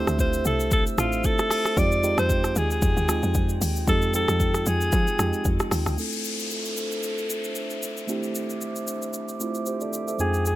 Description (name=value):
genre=amapiano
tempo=114 BPM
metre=4/4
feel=swing 55% on 16ths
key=D minor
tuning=A4 = 440 Hz
part: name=breathy alto saxophone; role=melody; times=0.0-10.6 s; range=F4 to D5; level=-27 LUFS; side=equal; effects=low-pass filter, tape echo
part: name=tine electric piano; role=accompaniment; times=0.0-10.6 s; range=F3 to G5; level=-30 LUFS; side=right 3 dB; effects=low-pass filter
part: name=glass harmonica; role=sustained chords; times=0.0-10.6 s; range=D4 to E6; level=-34 LUFS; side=left 1 dB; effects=sidechain pumping, low-pass filter
part: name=woody log drum bass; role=bass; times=0.0-6.0 s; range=A1 to F3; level=-26 LUFS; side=equal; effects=none
part: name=deep house drum kit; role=drums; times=0.1-10.6 s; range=hi-hat, kick drum, rim click, shaker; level=-26 LUFS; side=equal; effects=none
part: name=downlifter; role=sound effects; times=6.0-10.2 s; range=none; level=-34 LUFS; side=left 3 dB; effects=none
part: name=warm sub bass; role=bass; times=10.2-10.6 s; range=F2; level=-25 LUFS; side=equal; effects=none
room=light reverb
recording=none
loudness=-22 LUFS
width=side -15 dB against mid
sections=0.0-6.0 A section; 6.0-10.6 B section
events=drop 0.0-6.0; filter sweep 6.0-10.6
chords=0.0 Dm9; 1.8 Fm9; 6.0 Dm9